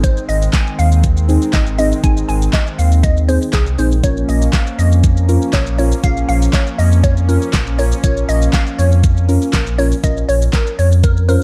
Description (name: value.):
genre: dance-pop.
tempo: 120 BPM.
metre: 4/4.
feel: straight.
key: Bb minor.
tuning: A4 = 440 Hz.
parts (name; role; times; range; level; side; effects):
glassy wavetable pluck; melody; 0.0-11.4 s; Ab4 to Ab5; -24 LUFS; equal; chorus, sidechain pumping, tape echo.
deep mellow chord stab; accompaniment; 0.0-11.4 s; C4 to C5; -23 LUFS; equal; chorus, sidechain pumping.
warm analog pad; sustained chords; 0.0-11.4 s; Eb3 to Db4; -27 LUFS; equal; chorus, sidechain pumping.
sub bass with octave; bass; 0.0-11.4 s; Ab1 to F2; -16 LUFS; equal; sidechain pumping.
pop drum kit; drums; 0.0-11.4 s; handclaps, hi-hat, kick drum, shaker, snare drum; -19 LUFS; equal; none.
room: digital ambience.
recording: dark, warm production.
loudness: -14 LUFS.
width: mono.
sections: 0.0-11.4 A section.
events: none.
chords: 0.0 Ab; 4.0 Bbm.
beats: | 0.04 0.54 1.04 1.54 | 2.04 2.54 3.04 3.54 | 4.04 4.54 5.04 5.54 | 6.04 6.54 7.04 7.54 | 8.04 8.54 9.04 9.54 | 10.04 10.54 11.04.